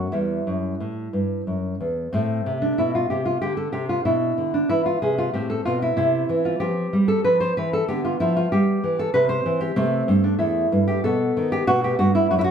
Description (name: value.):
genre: classical, baroque-style dance for nylon-string guitar.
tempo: 94 BPM.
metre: 3/4.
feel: rubato.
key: A minor.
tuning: A4 = 440 Hz.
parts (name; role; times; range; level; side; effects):
nylon-string guitar; solo; 0.0-12.5 s; E2 to C5; -20 LUFS; equal; slapback echo.
room: light reverb.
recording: close, detailed microphones.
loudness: -20 LUFS.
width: side -7 dB against mid.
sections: 0.0-2.1 A section; 2.1-12.5 A section.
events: none.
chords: 0.1 Em; 2.1 Am; 4.1 E5/B; 5.4 Am; 6.0 C; 7.9 G7/D; 9.1 C; 9.8 Am; 11.0 B; 11.7 B5.